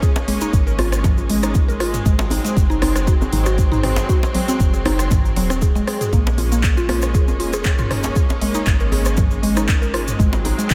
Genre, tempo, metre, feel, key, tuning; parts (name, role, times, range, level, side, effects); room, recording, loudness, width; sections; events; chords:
afro house; 118 BPM; 4/4; swing 54% on 16ths; Bb minor; A4 = 440 Hz
rich symphonic string section; sustained chords; 0.0-10.7 s; Gb3 to Db4; -29 LUFS; equal; vintage 12-bit sampler grit, sidechain pumping
mallet-like synth pluck; arpeggios; 0.0-10.7 s; Eb3 to Bb4; -25 LUFS; equal; chorus, phaser, sidechain pumping, tape echo
woody FM bass; bass; 0.0-10.7 s; Eb1 to Bb1; -25 LUFS; equal; sidechain pumping
deep house drum kit; drums; 0.0-10.7 s; handclaps, hi-hat, rim click, toms; -28 LUFS; equal
electronic kick drum; drums; 0.0-10.7 s; -19 LUFS; equal
cabasa; percussion; 0.0-10.7 s; -36 LUFS; equal
djembe; percussion; 0.2-10.6 s; -29 LUFS; equal
light reverb, small room ambience; -18 LUFS; mono
0.0-10.7 A section
0.0 Bbm7; 2.1 Ab7; 6.1 Bbm7; 10.2 Ab7